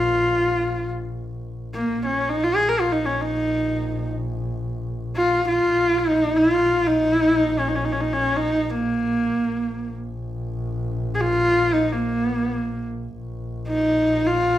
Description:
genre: mongolian traditional, Mongolian folk.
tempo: free time.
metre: none.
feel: none.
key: Bb yu mode.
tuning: A4 = 439 Hz.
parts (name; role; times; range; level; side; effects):
clear horsehead fiddle; melody; 0.0-14.6 s; Bb3 to Bb4; -19 LUFS; equal; none.
warm double bass; drone; 0.0-14.6 s; Bb1; -28 LUFS; left 1 dB; none.
room: moderate large studio reverb, RT60 0.9 s.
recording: band playing live in one room.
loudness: -20 LUFS.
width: side -13 dB against mid.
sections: 0.0-13.2 A section; 13.2-14.6 A section.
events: none.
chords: none.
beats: free time.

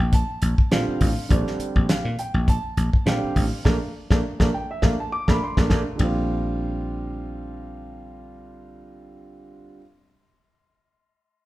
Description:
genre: electric jazz fusion.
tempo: 102 BPM.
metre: 4/4.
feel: swing 55% on 16ths.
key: Bb major.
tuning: A4 = 438 Hz.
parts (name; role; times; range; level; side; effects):
warm baby grand piano; accompaniment; 0.0-9.8 s; D3 to D6; -28 LUFS; right 2 dB; none.
dry thumbed slap bass; bass; 0.0-9.8 s; A1 to Bb2; -25 LUFS; equal; none.
damped 70s drum kit; drums; 0.1-6.1 s; hi-hat, kick drum, ride cymbal, snare drum; -21 LUFS; equal; none.
room: moderate large studio reverb, RT60 1.0 s.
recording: band playing live in one room.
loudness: -20 LUFS.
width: side -17 dB against mid.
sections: 0.0-6.0 A section; 6.0-8.3 B section.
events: band accent 3.6-6.0; drum fill 5.4-6.0.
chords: 0.0 Bbmaj9; 6.0 Bbadd9.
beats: 0.13 0.71 | 1.30 1.89 2.47 3.06 | 3.65 4.23 4.82 5.41 | 5.99 6.58 7.17 7.75.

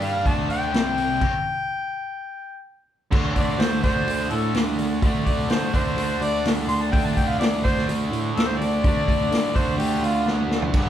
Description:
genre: blues rock power trio and southern rock.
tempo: 126 BPM.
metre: 4/4.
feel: straight.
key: unclear.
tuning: A4 = 440 Hz.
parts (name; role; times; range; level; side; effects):
mellow harmonica; melody; 0.0-10.3 s; F4 to C6; -26 LUFS; left 2 dB; overdrive.
distorted electric guitar; riff; 0.0-10.9 s; G2 to G4; -26 LUFS; right 1 dB; overdrive.
tine electric piano; bass; 0.0-10.9 s; C2 to D3; -28 LUFS; right 2 dB; fast stereo tremolo.
vintage drum kit; drums; 0.0-10.9 s; crash cymbal, hi-hat, kick drum, snare drum, toms; -23 LUFS; equal; none.
room: moderate large studio reverb, RT60 0.9 s.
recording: band playing live in one room.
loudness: -20 LUFS.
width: side -10 dB against mid.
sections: 0.0-3.1 A section; 3.1-10.9 B section.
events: stop 1.2-3.1; harmonica solo 3.1-10.9; drum fill 10.3-10.8.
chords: 0.3 D5; 0.7 C5; 1.2 N.C.; 3.1 D5.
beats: 0.25 0.73 | 1.21 1.69 2.17 2.64 | 3.12 3.60 4.08 4.55 | 5.03 5.51 5.99 6.46 | 6.94 7.42 7.89 8.37 | 8.85 9.32 9.80 10.27 | 10.75.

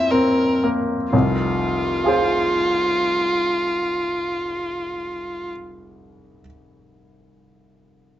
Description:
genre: classical, romantic duo for violin and grand piano.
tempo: 65 BPM.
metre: 3/4.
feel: rubato.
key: F minor.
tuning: A4 = 440 Hz.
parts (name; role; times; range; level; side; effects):
rich violin; melody; 0.0-5.5 s; F4 to E5; -21 LUFS; equal; none.
bright grand piano; accompaniment; 0.0-8.2 s; F1 to C5; -20 LUFS; equal; none.
room: light reverb.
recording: nothing above 7.7 kHz.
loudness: -18 LUFS.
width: side -12 dB against mid.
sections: 0.0-1.1 A section; 1.1-6.7 B section.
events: slowing down 0.0-1.1.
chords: 0.0 C7/F; 1.1 Fm.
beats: 0.10 | 1.13 2.04 2.98 | 3.91 4.83 5.75.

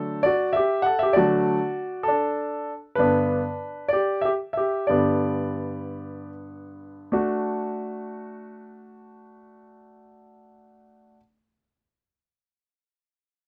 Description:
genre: pop.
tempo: 48-66 BPM (dotted quarters).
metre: 6/8.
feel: straight.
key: D major.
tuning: A4 = 440 Hz.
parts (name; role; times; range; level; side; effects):
bright concert grand piano; solo; 0.0-11.2 s; G2 to F#5; -25 LUFS; equal; none.
room: light reverb.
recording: dry, close 1970s-style studio recording.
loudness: -24 LUFS.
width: mono.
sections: 0.0-7.1 A section; 7.1-12.1 B section.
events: grand piano solo 0.0-7.1; slowing down 3.0-7.1.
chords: 0.0 D; 3.0 G; 7.1 D.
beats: 0.24 | 1.16 2.07 | 2.98 3.91 | 4.89 5.95 | 7.12 8.37 | 9.61 10.85.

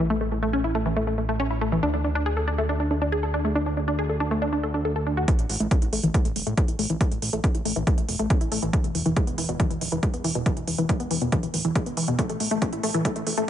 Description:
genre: uplifting trance.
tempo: 139 BPM.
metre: 4/4.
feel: straight.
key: unclear.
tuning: A4 = 442 Hz.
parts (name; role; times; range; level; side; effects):
wide unison pluck; arpeggios; 0.0-13.4 s; B2 to A4; -25 LUFS; left 1 dB; sidechain pumping, tape echo.
fat analog bass; bass; 0.0-13.4 s; D1 to D2; -29 LUFS; equal; sidechain pumping.
electronic hi-hat; drums; 5.3-13.5 s; none; -31 LUFS; right 4 dB; high-pass filter on hats, high-pass filter on room.
electronic kick drum; drums; 5.3-13.1 s; none; -22 LUFS; equal; none.
room: moderate lush hall reverb, RT60 1.8 s, digital ambience.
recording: high-pass filter, nothing above 10.7 kHz.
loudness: -22 LUFS.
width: side -10 dB against mid.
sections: 0.0-5.3 A section; 5.3-13.5 B section.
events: filter sweep on synth arpeggio sound 0.0-5.3, 5.3-13.5; build-up 5.3-13.5; drum fill 12.2-13.5.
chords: 0.0 N.C.; 5.3 A5; 8.7 N.C.; 12.2 A5.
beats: | 0.10 0.53 0.96 1.40 | 1.83 2.26 2.69 3.12 | 3.55 3.99 4.42 4.85 | 5.28 5.71 6.14 6.58 | 7.01 7.44 7.87 8.30 | 8.73 9.17 9.60 10.03 | 10.46 10.89 11.32 11.76 | 12.19 12.62 13.05.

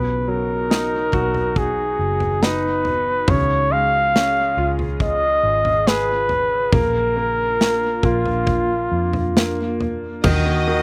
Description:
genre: pop ballad.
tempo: 70 BPM.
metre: 4/4.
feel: straight.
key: unclear.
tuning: A4 = 440 Hz.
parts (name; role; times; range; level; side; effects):
warm flugelhorn; melody; 0.0-10.8 s; F4 to F5; -22 LUFS; equal; none.
clear baby grand piano; accompaniment; 0.0-10.8 s; B2 to Ab4; -28 LUFS; equal; slapback echo.
glassy FM pad; sustained chords; 0.0-10.8 s; Db3 to Bb5; -33 LUFS; equal; ensemble chorus, built-in reverb.
vintage muted fingered electric bass; bass; 0.0-10.8 s; F#1 to F2; -28 LUFS; equal; none.
modern studio drum kit; drums; 0.7-10.4 s; crash cymbal, kick drum, snare drum, toms; -24 LUFS; equal; none.
clear studio violin section; second line; 10.2-10.8 s; Eb5; -26 LUFS; equal; none.
room: little or no reverb.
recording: recorded outdoors, with no room sound.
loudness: -19 LUFS.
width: mono.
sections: 0.0-10.2 A section.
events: none.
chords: 0.0 B; 3.3 Db; 6.7 Bb; 10.2 Ebm.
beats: 0.71 1.57 2.42 | 3.29 4.14 5.00 5.87 | 6.73 7.60 8.47 9.36 | 10.24.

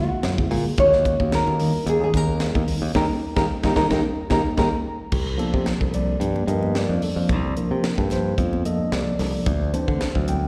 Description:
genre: electric jazz fusion.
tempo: 110 BPM.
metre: 4/4.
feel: straight.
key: unclear.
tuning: A4 = 440 Hz.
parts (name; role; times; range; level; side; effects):
nylon-string guitar; melody; 0.0-4.7 s; D#4 to C#5; -24 LUFS; equal; slapback echo, tape echo.
mellow tine electric piano; accompaniment; 0.0-10.5 s; D3 to G5; -28 LUFS; equal; slapback echo.
modern bright fingered electric bass; bass; 0.2-10.5 s; C2 to D3; -27 LUFS; equal; none.
crisp fusion drum kit; drums; 0.2-10.4 s; crash cymbal, hi-hat, kick drum, snare drum; -29 LUFS; equal; none.
congas; percussion; 0.2-10.4 s; none; -36 LUFS; equal; none.
room: moderate club reverb, RT60 0.8 s.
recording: live gig heard through the venue's PA, recital hall reverb.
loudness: -22 LUFS.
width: mono.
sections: 0.0-5.1 A section; 5.1-10.5 B section.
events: band accent 3.0-5.1; drum fill 4.0-5.1.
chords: 0.0 A#aug7; 0.8 D#m7; 3.0 D#7; 5.1 C13sus4; 9.5 D13sus4.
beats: 0.24 | 0.78 1.33 1.87 2.41 | 2.95 3.50 4.04 4.58 | 5.12 5.67 6.21 6.75 | 7.30 7.84 8.38 8.93 | 9.47 10.02.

